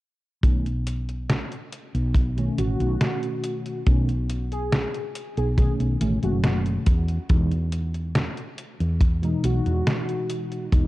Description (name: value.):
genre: vaporwave.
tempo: 70 BPM.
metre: 4/4.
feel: straight.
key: unclear.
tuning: A4 = 440 Hz.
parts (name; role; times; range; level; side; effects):
mellow tine electric piano; accompaniment; 0.4-10.9 s; B2 to D#4; -28 LUFS; equal; medium stereo tremolo, analog chorus, analog delay.
woody fretless electric bass; bass; 0.4-10.9 s; F#1 to E2; -24 LUFS; equal; tube saturation.
detuned 8-bit digital drum machine; drums; 0.4-10.9 s; hi-hat, snare drum; -26 LUFS; equal; none.
kick drum; drums; 0.4-10.9 s; none; -20 LUFS; equal; none.
warm velvety synth lead; melody; 2.6-10.6 s; F#4 to G#4; -32 LUFS; left 1 dB; chorus, vintage 12-bit sampler grit, tape echo.
room: studio reverb.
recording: dark, warm production.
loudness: -22 LUFS.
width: side -18 dB against mid.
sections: 0.4-10.9 A section.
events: none.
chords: 0.4 B9; 6.9 Emaj7.